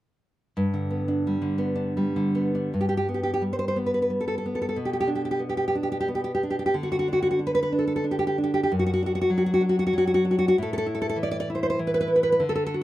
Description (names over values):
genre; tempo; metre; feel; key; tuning
romantic piece for solo classical guitar; 76-99 BPM; 3/4; rubato; G major; A4 = 440 Hz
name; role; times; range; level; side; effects
nylon-string guitar; solo; 0.6-12.8 s; F#2 to D5; -22 LUFS; equal; none
room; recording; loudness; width
light reverb; minimal, uncompressed stereo recording; -22 LUFS; side -14 dB against mid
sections
0.6-2.7 A section; 2.7-12.8 B section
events
none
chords
0.6 G; 4.8 G/B; 6.7 N.C.; 8.7 D/F#; 10.6 A5